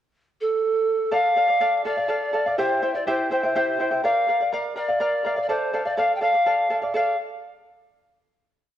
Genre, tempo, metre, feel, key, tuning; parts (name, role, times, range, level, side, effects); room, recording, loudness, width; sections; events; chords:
andean folk, Andean ensemble; 82 BPM (dotted quarters); 6/8; straight; D minor; A4 = 440 Hz
polished pan flute; melody; 0.4-7.2 s; A4 to G5; -22 LUFS; equal
charango; accompaniment; 1.1-7.2 s; E4 to G5; -25 LUFS; right 1 dB
moderate scoring stage reverb, RT60 1.5 s; worn, warbling old tape, cassette tape, warbly pitch drift; -20 LUFS; side -11 dB against mid
0.0-1.1 pickup bar; 1.1-7.0 A section; 7.0-8.4 final chord
0.0 N.C.; 1.1 Dm; 2.6 C; 4.0 Bb; 5.5 Dm